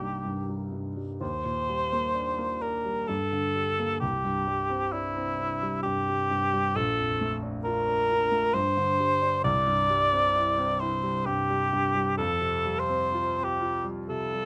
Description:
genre	classical, impressionist duo for cor anglais and grand piano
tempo	66 BPM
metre	3/4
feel	uneven beats, rubato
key	unclear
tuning	A4 = 438 Hz
part	mellow cor anglais	melody	0.0-14.5 s	E4 to D5	-28 LUFS	equal	none
part	clear grand piano	accompaniment	0.0-14.5 s	Bb1 to F4	-33 LUFS	equal	none
room	moderate studio ambience, RT60 0.5 s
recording	none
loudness	-27 LUFS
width	mono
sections	0.0-14.5 A section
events	none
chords	0.0 Cm7; 1.2 Ebmaj7; 3.1 Gm; 4.0 Cadd9; 6.8 Bbmaj7; 8.5 G5; 9.4 Cadd9; 12.2 Fadd9

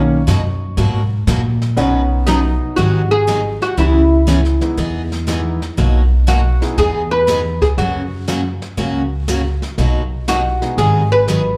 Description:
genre	country, western swing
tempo	120 BPM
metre	4/4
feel	swing 68% on 8ths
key	B major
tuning	A4 = 440 Hz
part	clear upright piano	accompaniment	0.0-6.8, 10.6-10.8 s	D#3 to C#6	-24 LUFS	equal	none
part	upright bass	bass	0.0-11.6 s	G#1 to A#2	-19 LUFS	equal	none
part	picked steel-string acoustic guitar	accompaniment	0.3-11.4 s	B2 to B4	-23 LUFS	equal	slapback echo
part	jazz brush drum kit	drums	0.3-11.6 s	brushed snare drum, hi-hat, kick drum, snare drum	-29 LUFS	equal	none
part	oud	melody	2.3-11.6 s	D#4 to B4	-19 LUFS	equal	none
room	small room ambience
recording	live gig heard through the venue's PA, club reverb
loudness	-16 LUFS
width	mono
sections	0.0-1.8 A section; 1.8-11.6 B section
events	upright piano solo 0.0-1.8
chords	0.0 Bmaj7; 1.8 Badd9; 2.8 G#m7; 3.8 C#m7; 4.8 Emaj7; 5.8 Bmaj7; 6.8 Emaj7; 7.8 F#; 9.8 Bmaj7; 10.8 G#m7

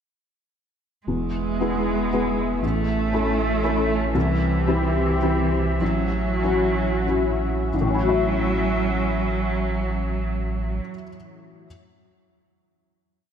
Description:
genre	neoclassical piano and strings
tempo	89-120 BPM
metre	3/4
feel	rubato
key	A major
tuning	A4 = 440 Hz
part	rich cello	second line	1.1-10.8 s	E3 to A3	-26 LUFS	right 5 dB	none
part	felt-muted upright piano	accompaniment	1.1-11.7 s	A1 to E5	-25 LUFS	left 3 dB	ensemble chorus
part	warm analog pad	sustained chords	1.1-10.8 s	B3 to E5	-29 LUFS	left 1 dB	chorus
part	warm sub bass	bass	1.1-10.8 s	E1 to C2	-26 LUFS	equal	none
room	moderate church reverb, RT60 2.7 s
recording	dreamy mix soaked in reverb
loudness	-20 LUFS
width	side -8 dB against mid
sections	1.1-7.7 theme; 7.7-11.6 final chord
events	slowing down 3.4-7.7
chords	1.1 E; 2.6 A; 4.1 C; 5.8 A6

